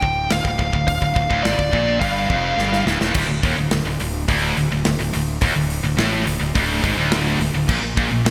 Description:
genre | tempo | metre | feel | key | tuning
heavy metal | 106 BPM | 4/4 | straight | D phrygian | A4 = 440 Hz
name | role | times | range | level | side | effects
high-gain lead guitar | melody | 0.0-2.8 s | D5 to G5 | -24 LUFS | equal | distortion
scooped high-gain guitar | riff | 0.0-8.3 s | D2 to Bb2 | -27 LUFS | equal | distortion
tight distorted guitar | riff | 0.0-8.3 s | D2 to Bb2 | -27 LUFS | equal | distortion
fuzz fingered electric bass | bass | 0.0-8.3 s | D1 to Bb1 | -28 LUFS | equal | overdrive
modern studio drum kit | drums | 0.0-8.3 s | crash cymbal, hi-hat, kick drum, snare drum | -26 LUFS | equal | gated reverb
distorted electric guitar | riff | 3.1-8.3 s | D2 to Bb2 | -28 LUFS | equal | none
room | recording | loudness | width
moderate lush hall reverb, RT60 2.0 s | bright 1980s-style digital production | -20 LUFS | mono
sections
0.0-3.2 A section; 3.2-8.3 B section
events
drum fill 2.6-3.2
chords
0.0 Dm; 3.2 D5; 7.7 Bb5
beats
0.31 | 0.88 1.45 2.02 2.58 | 3.15 3.72 4.29 4.86 | 5.42 5.99 6.56 7.13 | 7.70 8.26

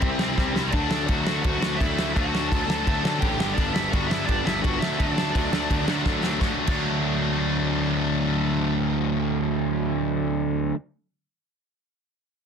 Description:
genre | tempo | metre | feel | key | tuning
punk rock | 169 BPM | 4/4 | straight | D major | A4 = 440 Hz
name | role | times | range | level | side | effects
high-gain lead guitar | melody | 0.0-6.0 s | C4 to A5 | -29 LUFS | equal | distortion, digital delay
sludgy distorted guitar | riff | 0.0-10.8 s | G2 to E4 | -25 LUFS | equal | overdrive
fuzz picked electric bass | bass | 0.0-10.7 s | G1 to D2 | -29 LUFS | equal | overdrive
loose indie drum kit | drums | 0.0-6.8 s | crash cymbal, kick drum, snare drum | -26 LUFS | equal | none
room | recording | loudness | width
little or no reverb | dense, heavily limited modern master | -22 LUFS | side -6 dB against mid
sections
0.0-6.4 A section; 6.4-9.2 B section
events
drum fill 0.4-0.7, 6.1-6.4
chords
0.0 C; 0.7 D; 3.4 G; 4.8 D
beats
0.02 0.37 | 0.73 1.08 1.44 1.79 | 2.15 2.51 2.86 3.21 | 3.57 3.92 4.28 4.63 | 4.99 5.34 5.70 6.05 | 6.41 6.76 7.12 7.47 | 7.83 8.18 8.54 8.89

